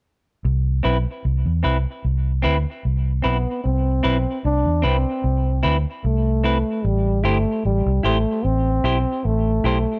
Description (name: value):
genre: roots reggae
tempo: 75 BPM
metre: 4/4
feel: straight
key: C major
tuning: A4 = 441 Hz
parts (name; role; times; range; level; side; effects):
- vintage muted fingered electric bass; bass; 0.4-9.8 s; G1 to E2; -22 LUFS; equal; none
- semi-hollow electric guitar; accompaniment; 0.8-9.8 s; C4 to C5; -26 LUFS; equal; tape echo
- dark trombone; melody; 3.2-10.0 s; G3 to D4; -25 LUFS; equal; tape echo
room: light reverb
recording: none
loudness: -21 LUFS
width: mono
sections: 0.4-3.6 A section; 3.6-10.0 B section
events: none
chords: 0.4 Cmaj7; 6.8 Am7